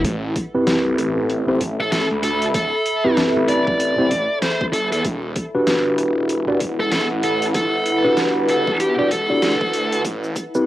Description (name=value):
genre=glitch hop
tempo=96 BPM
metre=4/4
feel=swing 60% on 16ths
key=A dorian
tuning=A4 = 435 Hz
part: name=phased detuned saw bass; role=bass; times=0.0-10.3 s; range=E1 to E2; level=-26 LUFS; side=equal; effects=phaser, tube saturation, high-pass filter
part: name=dubstep drum kit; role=drums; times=0.0-10.6 s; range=hi-hat, rim click, shaker, snare drum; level=-25 LUFS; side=equal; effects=overdrive, high-pass filter on hats, high-pass filter on snare, high-pass filter on perc
part: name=electronic kick drum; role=drums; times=0.0-10.5 s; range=none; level=-26 LUFS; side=equal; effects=overdrive, high-pass filter on kick
part: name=warbly tape-like pad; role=texture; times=0.0-10.7 s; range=E4 to B5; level=-24 LUFS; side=equal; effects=chorus, built-in reverb, sidechain pumping, cassette tape
part: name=mellow tine electric piano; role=stabs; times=0.5-10.7 s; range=C4 to D5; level=-19 LUFS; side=equal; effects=medium stereo tremolo, sidechain pumping, low-pass filter, cassette tape, analog delay
part: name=high-gain lead guitar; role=melody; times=1.8-10.0 s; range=G4 to D5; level=-21 LUFS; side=equal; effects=distortion, cassette tape, analog delay
room=wet small room ambience, RT60 0.5 s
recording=home recording on cassette, vinyl crackle, high-pass filter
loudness=-17 LUFS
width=side -14 dB against mid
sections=0.0-10.7 A section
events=build-up 0.0-10.7; filter sweep on tine electric piano 0.0-10.7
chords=0.0 Am9; 5.0 Em9; 10.0 Am9